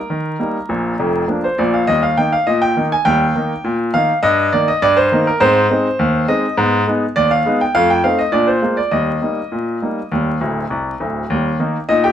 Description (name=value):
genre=ragtime piano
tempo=102 BPM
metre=2/4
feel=straight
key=Eb major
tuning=A4 = 439 Hz
part: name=bright grand piano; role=solo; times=0.0-12.1 s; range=D1 to Ab5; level=-14 LUFS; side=equal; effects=none
room=light reverb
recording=vinyl crackle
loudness=-14 LUFS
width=side -10 dB against mid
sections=0.0-11.3 A section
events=grand piano fill 10.4-11.3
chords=0.0 Eb; 0.7 Bb; 1.9 Eb; 4.2 Eb/G; 5.4 Ab; 6.6 Abm; 7.7 F7; 8.3 Bb7; 8.9 Eb